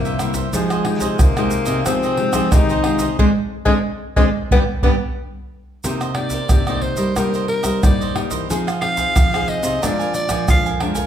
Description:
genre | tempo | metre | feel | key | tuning
samba and choro | 90 BPM | 4/4 | straight | C minor | A4 = 440 Hz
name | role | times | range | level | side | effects
breathy tenor saxophone | second line | 0.0-4.9 s | Ab3 to Eb4 | -22 LUFS | left 2 dB | none
cavaquinho | accompaniment | 0.0-11.1 s | D4 to Ab5 | -28 LUFS | right 5 dB | none
nylon-string guitar | accompaniment | 0.0-11.1 s | F2 to Ab4 | -23 LUFS | left 3 dB | none
nylon-string guitar | bass | 0.0-11.1 s | G2 to G3 | -25 LUFS | right 1 dB | none
tube shaker, pandeiro, tamborim and surdo | percussion | 0.1-11.1 s | none | -19 LUFS | right 1 dB | none
growling soprano saxophone | melody | 6.1-10.7 s | Bb4 to F5 | -22 LUFS | equal | none
room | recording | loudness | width
wet large studio reverb, RT60 1.1 s | band playing live in one room | -16 LUFS | side -10 dB against mid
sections
0.0-5.8 A section; 5.8-11.1 B section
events
tenor saxophone solo 0.0-5.8; band accent 3.2-5.8; soprano saxophone solo 5.8-11.1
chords
0.0 C7; 0.5 Fm9; 3.2 Ab; 4.5 G; 5.8 Cm7; 8.5 Fm7; 9.8 Bb7

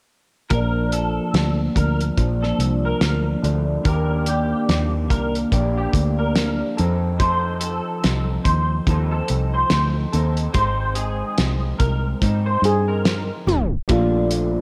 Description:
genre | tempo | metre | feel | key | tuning
indie pop, bedroom pop | 72 BPM | 4/4 | swing 60% on 16ths | Bb major | A4 = 440 Hz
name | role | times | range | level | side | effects
electric guitar through a small old amp | second line | 0.5-13.3 s | G4 to C5 | -29 LUFS | equal | ensemble chorus, slapback echo
electric guitar through a small old amp | accompaniment | 0.5-14.6 s | Bb2 to A4 | -27 LUFS | equal | analog chorus, vibrato effect, low-pass filter
fingered electric bass | bass | 0.5-14.6 s | Ab1 to Ab2 | -24 LUFS | equal | none
cloth-damped thuddy drum kit | drums | 0.5-14.5 s | hi-hat, kick drum, snare drum | -25 LUFS | equal | none
steel pan | melody | 12.7-14.6 s | F4 to Ab4 | -24 LUFS | equal | subtle chorus, slapback echo
mellow tine electric piano | accompaniment | 13.9-14.6 s | Bb3 to D5 | -29 LUFS | equal | cassette tape
room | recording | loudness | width
light reverb, small room ambience | tape stop | -20 LUFS | mono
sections
0.5-13.9 A section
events
filter sweep on clean electric guitar 0.5-13.9; tape stop 13.5-13.9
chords
0.5 Bbmaj7; 3.9 Ebmaj7; 6.8 F7; 10.5 Abmaj7; 13.9 Bbmaj7

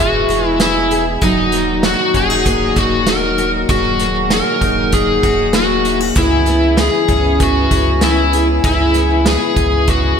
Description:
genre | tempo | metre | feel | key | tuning
dream pop | 97 BPM | 4/4 | straight | unclear | A4 = 440 Hz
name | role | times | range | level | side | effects
overdriven slide guitar | melody | 0.0-10.2 s | D#4 to A#4 | -16 LUFS | left 1 dB | wide subtle chorus, digital delay
dark French horn section | sustained chords | 0.0-10.2 s | A#2 to G#4 | -22 LUFS | equal | none
picked twelve-string acoustic guitar | arpeggios | 0.0-10.2 s | E3 to G#4 | -19 LUFS | left 3 dB | wide subtle chorus, digital delay
warm sub bass | bass | 0.0-10.2 s | D#1 to C#2 | -20 LUFS | right 1 dB | none
vintage drum kit | drums | 0.3-10.0 s | hi-hat, kick drum, snare drum | -19 LUFS | right 1 dB | gated reverb
room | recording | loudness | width
moderate lush hall reverb, RT60 2.1 s | bright 1980s-style digital production | -12 LUFS | side -7 dB against mid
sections
0.0-10.2 A section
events
none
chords
0.0 E; 1.2 D#m; 6.2 C#m7

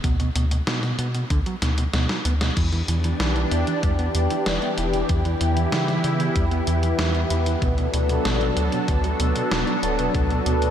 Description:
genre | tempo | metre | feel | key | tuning
synthwave | 95 BPM | 4/4 | straight | E minor | A4 = 440 Hz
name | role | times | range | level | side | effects
mellow electric guitar | riff | 0.0-10.7 s | B2 to E4 | -29 LUFS | right 3 dB | wide subtle chorus, low-pass filter, analog delay
round analog bass | bass | 0.0-10.7 s | D1 to C#3 | -23 LUFS | equal | tube saturation
electronic kick drum | drums | 0.0-10.3 s | none | -25 LUFS | equal | none
gated 80s digital drum machine | drums | 0.0-10.7 s | crash cymbal, hi-hat, snare drum | -28 LUFS | equal | gated reverb, gated reverb snare
lush unison pad | sustained chords | 2.8-10.7 s | E3 to A4 | -23 LUFS | equal | chorus, phaser, sidechain pumping
room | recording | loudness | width
moderate huge ambient reverb, RT60 9.3 s | dreamy mix soaked in reverb | -20 LUFS | side -9 dB against mid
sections
0.0-10.7 A section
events
drum fill 1.6-2.6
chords
0.0 Bm/D; 2.6 Em7; 7.6 Bm7

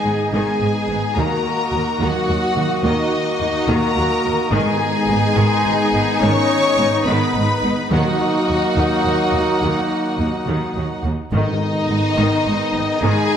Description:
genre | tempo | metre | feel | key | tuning
cinematic, epic orchestral film score | 71 BPM (dotted quarters) | 12/8 | straight | G# minor | A4 = 441 Hz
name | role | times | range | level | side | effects
rich symphonic violin section | melody | 0.0-13.4 s | D#5 to C#6 | -24 LUFS | left 2 dB | none
warm symphonic violin section | second line | 0.0-13.4 s | D#4 to C#5 | -24 LUFS | left 3 dB | none
warm symphonic viola section | accompaniment | 0.0-13.4 s | D#3 to F#4 | -26 LUFS | equal | none
bright trombone section | sustained chords | 0.0-13.4 s | D#3 to B3 | -29 LUFS | right 3 dB | none
mellow French horn section | sustained chords | 0.0-13.4 s | D#3 to C#4 | -24 LUFS | left 3 dB | none
warm woodwind section | sustained chords | 0.0-13.4 s | A#3 to D#5 | -30 LUFS | equal | none
dark trumpet section | stabs | 0.0-13.4 s | D#4 to G#4 | -25 LUFS | equal | none
rich symphonic cello section | bass | 0.1-13.1 s | D#2 to G#2 | -25 LUFS | right 2 dB | none
warm symphonic double bass section | bass | 0.1-13.1 s | G#1 to D#2 | -25 LUFS | right 2 dB | none
timpani | percussion | 4.5-12.1 s | G#2 to D#3 | -25 LUFS | equal | none
room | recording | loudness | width
moderate scoring stage reverb, RT60 1.8 s | none | -16 LUFS | side -8 dB against mid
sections
0.0-13.4 A section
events
none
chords
0.0 G#m; 1.2 D#m; 4.5 G#m; 7.9 D#m; 11.3 G#m

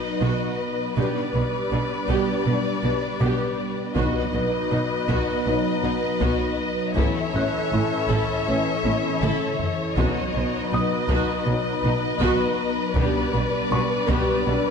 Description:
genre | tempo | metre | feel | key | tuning
cinematic, hybrid orchestral and electronic film score | 80 BPM | 4/4 | straight | unclear | A4 = 436 Hz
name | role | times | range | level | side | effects
warm symphonic violin section | second line | 0.0-14.7 s | B4 to E5 | -27 LUFS | left 4 dB | none
phased analog pad | sustained chords | 0.0-14.7 s | E3 to B4 | -27 LUFS | equal | phaser, chorus
impact | sound effects | 0.0-1.0 s | none | barely audible | none | none
dark concert grand piano | texture | 0.0-14.7 s | C#6 to F#6 | -35 LUFS | left 1 dB | ping-pong delay
warm symphonic viola section | accompaniment | 0.2-14.5 s | B3 to A4 | -29 LUFS | right 1 dB | none
bright symphonic double bass section | bass | 0.2-14.5 s | A1 to B1 | -30 LUFS | right 2 dB | none
warm symphonic cello section | bass | 0.2-14.5 s | A2 to B2 | -29 LUFS | right 2 dB | none
mellow French horn section | sustained chords | 1.0-14.7 s | E3 to D#4 | -31 LUFS | left 4 dB | none
taiko ensemble | drums | 4.0-14.7 s | none | -29 LUFS | left 1 dB | none
room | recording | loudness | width
moderate scoring stage reverb, RT60 1.9 s | nothing above 10.6 kHz | -21 LUFS | side -6 dB against mid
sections
0.0-14.7 A section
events
impact 0.0-1.0; drum fill 8.8-10.0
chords
0.0 B; 1.0 G/B; 4.0 B; 7.0 A; 10.0 B; 13.0 G/B

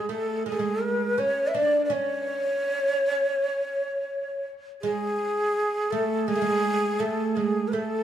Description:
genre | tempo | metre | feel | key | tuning
Persian modal ensemble | 82 BPM | 4/4 | straight | unclear | A4 = 441 Hz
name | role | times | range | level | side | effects
breathy ney | melody | 0.0-8.0 s | G#4 to E5 | -25 LUFS | equal | tape echo
oud | second line | 0.0-8.0 s | G#3 to D4 | -29 LUFS | right 5 dB | none
room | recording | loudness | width
moderate studio reverb, RT60 0.7 s | small room ambience | -24 LUFS | side -10 dB against mid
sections
0.0-8.0 A section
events
none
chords
none

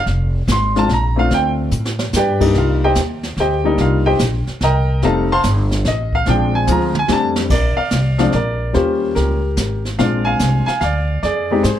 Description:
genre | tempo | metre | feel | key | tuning
jazz piano trio | 145 BPM | 3/4 | swing 67% on 8ths | Bb mixolydian | A4 = 443 Hz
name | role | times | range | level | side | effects
warm grand piano | melody | 0.0-11.8 s | F3 to C6 | -17 LUFS | left 1 dB | plate reverb
upright bass | bass | 0.0-11.8 s | F1 to A2 | -18 LUFS | equal | none
jazz brush drum kit | drums | 0.1-11.8 s | brushed snare drum, crash cymbal, hi-hat, kick drum, snare drum, toms | -23 LUFS | right 1 dB | none
room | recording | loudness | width
light reverb | lossy compression artefacts | -14 LUFS | side -10 dB against mid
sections
0.0-7.5 A section; 7.5-11.8 B section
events
grand piano solo 0.0-7.5; drum fill 1.7-2.1, 6.7-7.5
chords
0.0 Bb7(no3); 1.3 Dm7; 2.1 G; 2.5 Cm7; 5.0 F7; 6.3 Bb7; 7.1 F; 7.5 Bb; 8.7 Eb7; 10.0 Bb7; 11.2 Fm7

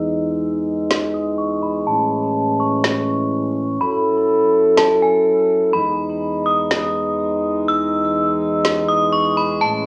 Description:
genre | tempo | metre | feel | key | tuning
hip hop, atmospheric cloud-rap | 124 BPM | 4/4 | half-time | E major | A4 = 440 Hz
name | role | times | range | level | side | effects
metallic FM bell | melody | 0.0-9.9 s | G#5 to E6 | -24 LUFS | equal | chorus, low-pass filter, tape echo
mellow brass ensemble | sustained chords | 0.0-9.9 s | E2 to A4 | -20 LUFS | equal | low-pass filter
electronic snare drum | drums | 0.9-8.8 s | none | -22 LUFS | equal | vintage 12-bit sampler grit
room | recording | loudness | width
moderate studio reverb, RT60 0.6 s | cassette tape, studio reverb | -18 LUFS | mono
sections
0.0-9.9 A section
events
break 0.0-5.7; filter sweep 0.0-9.9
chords
0.0 Emaj7; 1.9 Amaj7; 3.8 F#m7; 5.7 Emaj7

